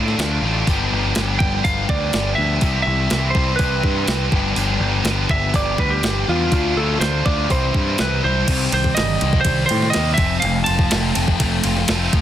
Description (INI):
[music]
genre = indie rock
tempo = 123 BPM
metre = 4/4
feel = straight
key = G mixolydian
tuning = A4 = 440 Hz
[part]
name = lightly driven lead guitar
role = melody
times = 0.0-12.1 s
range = F4 to A5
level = -22 LUFS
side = right 2 dB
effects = digital delay
[part]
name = high-gain distorted guitar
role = riff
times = 0.0-12.2 s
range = G2 to E4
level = -24 LUFS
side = right 7 dB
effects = distortion, ensemble chorus
[part]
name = overdriven electric guitar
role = riff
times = 0.0-12.2 s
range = F2 to G4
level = -24 LUFS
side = left 10 dB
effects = none
[part]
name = growling picked electric bass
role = bass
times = 0.0-12.2 s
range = F1 to A2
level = -22 LUFS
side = equal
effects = overdrive
[part]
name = clean 12-bit digital drum machine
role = drums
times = 0.1-12.2 s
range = crash cymbal, hi-hat, kick drum, ride cymbal, snare drum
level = -21 LUFS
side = equal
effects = overdrive
[sound]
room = light reverb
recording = dense, heavily limited modern master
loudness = -16 LUFS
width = side -11 dB against mid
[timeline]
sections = 0.0-8.5 A section; 8.5-12.2 B section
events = none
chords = 0.0 Dm; 0.7 G7; 2.6 Cmaj7; 4.3 G7; 6.5 Dm; 7.5 C; 8.5 Cm; 10.2 F